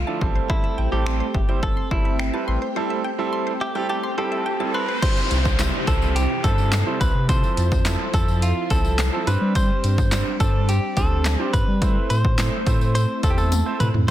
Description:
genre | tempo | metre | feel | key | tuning
dance-pop | 106 BPM | 4/4 | straight | unclear | A4 = 440 Hz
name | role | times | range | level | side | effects
direct-recorded clean electric guitar | melody | 0.0-14.1 s | E4 to C5 | -27 LUFS | equal | vibrato effect
ensemble organ-string | sustained chords | 0.0-14.1 s | C3 to E5 | -30 LUFS | equal | phaser, ensemble chorus, sidechain pumping
mallet-like synth pluck | arpeggios | 0.0-5.0 s | C5 to C6 | -33 LUFS | left 2 dB | chorus, sidechain pumping, tape echo
warm sub bass | bass | 0.0-14.1 s | G1 to G3 | -22 LUFS | equal | sidechain pumping
clear baby grand piano | accompaniment | 0.1-14.1 s | F3 to C5 | -28 LUFS | right 4 dB | sidechain pumping
punchy analog drum machine | drums | 0.2-14.1 s | crash cymbal, finger snaps, handclaps, hi-hat, kick drum, snare drum, toms | -22 LUFS | equal | soft clipping on snare
riser and downlifter | sound effects | 3.9-9.6 s | none | -31 LUFS | equal | none
tambourine | percussion | 5.0-14.1 s | none | -38 LUFS | left 8 dB | none
room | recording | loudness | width
digital ambience | dense, heavily limited modern master | -19 LUFS | side -12 dB against mid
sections
0.0-5.0 A section; 5.0-14.1 B section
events
riser 3.9-5.0; drum fill 13.5-14.1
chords
0.2 Am7; 5.0 C; 7.3 Fmaj7; 9.3 Gsus4; 11.8 Am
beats
| 0.50 1.06 1.63 2.19 | 2.76 3.33 3.89 4.46 | 5.03 5.59 6.16 6.72 | 7.29 7.86 8.42 8.99 | 9.55 10.12 10.69 11.25 | 11.82 12.38 12.95 13.52 | 14.08

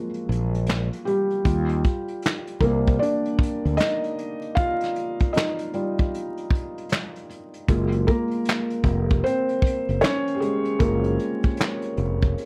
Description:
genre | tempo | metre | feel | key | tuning
lo-fi hip hop | 77 BPM | 4/4 | swing 63% on 16ths | Eb major | A4 = 440 Hz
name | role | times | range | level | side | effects
felt-muted upright piano | accompaniment | 0.0-12.5 s | F3 to F5 | -27 LUFS | equal | low-pass filter
vintage brush drum kit | drums | 0.1-12.5 s | handclaps, hi-hat, kick drum, snare drum | -25 LUFS | equal | none
fretless electric bass | bass | 0.3-12.3 s | F1 to Eb2 | -26 LUFS | equal | none
room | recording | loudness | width
light reverb | vinyl crackle | -24 LUFS | mono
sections
0.0-12.5 A section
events
break 0.0-1.4, 4.6-7.7; felt piano solo 0.0-12.5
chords
0.0 Gbmaj9; 1.4 Ebmaj9; 7.7 Gbmaj9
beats
0.67 | 1.45 2.23 3.01 3.79 | 4.57 5.35 6.13 6.91 | 7.68 8.46 9.24 10.02 | 10.80 11.58 12.36

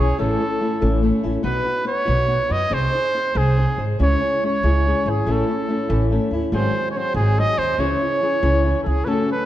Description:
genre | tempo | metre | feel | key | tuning
mexican folk, mariachi | 94 BPM (dotted quarters) | 6/8 | rubato | C# minor | A4 = 443 Hz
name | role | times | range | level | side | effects
clear trumpet | melody | 0.0-9.5 s | G#4 to D#5 | -22 LUFS | right 1 dB | none
flamenco guitar | accompaniment | 0.0-9.5 s | F#2 to B#4 | -23 LUFS | left 2 dB | none
upright bass | bass | 0.0-9.0 s | G#1 to G#2 | -21 LUFS | equal | none
room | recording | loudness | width
moderate scoring stage reverb, RT60 1.8 s | dark, warm production | -17 LUFS | side -13 dB against mid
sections
0.0-9.1 A section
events
none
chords
0.2 A; 1.4 B; 2.7 G#/B#; 4.0 C#m; 5.3 A; 6.5 G#7; 7.8 C#m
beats
| 0.19 0.82 | 1.45 2.08 | 2.72 3.36 | 4.00 4.64 | 5.27 5.89 | 6.52 7.15 | 7.79 8.43 | 9.08

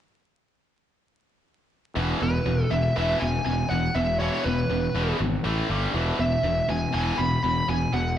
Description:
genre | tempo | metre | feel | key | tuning
rock | 121 BPM | 4/4 | straight | E major | A4 = 440 Hz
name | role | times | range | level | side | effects
tight distorted guitar | riff | 2.0-8.2 s | E2 to A3 | -29 LUFS | left 7 dB | distortion
tight distorted guitar | riff | 2.0-8.2 s | E2 to A3 | -29 LUFS | right 6 dB | distortion, slapback echo
fuzz fingered electric bass | bass | 2.0-8.2 s | E1 to A1 | -27 LUFS | equal | overdrive
smooth overdriven lead guitar | melody | 2.2-8.2 s | B4 to B5 | -27 LUFS | equal | analog delay
room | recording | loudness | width
moderate lush hall reverb, RT60 1.7 s, digital ambience | big arena sound, vinyl crackle, nothing above 10.6 kHz | -22 LUFS | side -10 dB against mid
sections
2.0-8.2 A section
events
none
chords
2.0 E5; 5.5 A5; 5.7 G5; 5.9 E5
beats
| 1.97 2.47 2.96 3.46 | 3.96 4.46 4.95 5.45 | 5.95 6.45 6.94 7.44 | 7.94

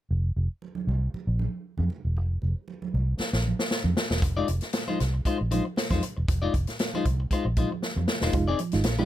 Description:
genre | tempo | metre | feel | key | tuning
funk | 116 BPM | 4/4 | straight | F dorian | A4 = 437 Hz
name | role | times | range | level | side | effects
vintage muted fingered electric bass | bass | 0.1-9.0 s | E1 to F2 | -26 LUFS | equal | none
congas | percussion | 0.6-9.1 s | none | -36 LUFS | right 6 dB | none
swinging big-band drum kit | drums | 3.2-9.0 s | hi-hat, kick drum, snare drum | -28 LUFS | equal | none
clean electric guitar | accompaniment | 4.2-9.1 s | Ab3 to D5 | -29 LUFS | left 5 dB | none
mellow reed electric piano | stabs | 8.3-9.1 s | F3 to F4 | -27 LUFS | right 4 dB | fast tremolo
room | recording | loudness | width
little or no reverb | none | -25 LUFS | side -13 dB against mid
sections
0.1-8.3 A section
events
drum fill 3.2-4.2, 7.8-8.3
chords
0.1 Fm7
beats
| 0.10 0.61 1.13 1.65 | 2.16 2.68 3.19 3.71 | 4.22 4.74 5.25 5.77 | 6.28 6.79 7.31 7.82 | 8.34 8.85

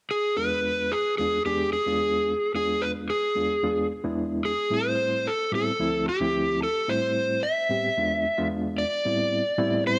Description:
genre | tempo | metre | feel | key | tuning
blues | 111 BPM | 4/4 | straight | unclear | A4 = 441 Hz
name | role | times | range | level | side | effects
overdriven slide guitar | melody | 0.1-10.0 s | G4 to E5 | -27 LUFS | equal | none
overdriven reed electric piano | accompaniment | 0.4-10.0 s | D2 to G#4 | -31 LUFS | equal | fast tremolo
room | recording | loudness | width
moderate plate reverb, RT60 2.5 s | none | -26 LUFS | mono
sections
0.4-9.0 A section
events
none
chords
0.4 E7b9; 4.7 Am9; 5.8 Dm9; 6.9 Am9; 8.0 E7b9; 9.0 Am7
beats
| 0.37 0.91 1.46 2.00 | 2.54 3.08 3.62 4.17 | 4.71 5.25 5.79 6.33 | 6.88 7.42 7.96 8.50 | 9.04 9.58

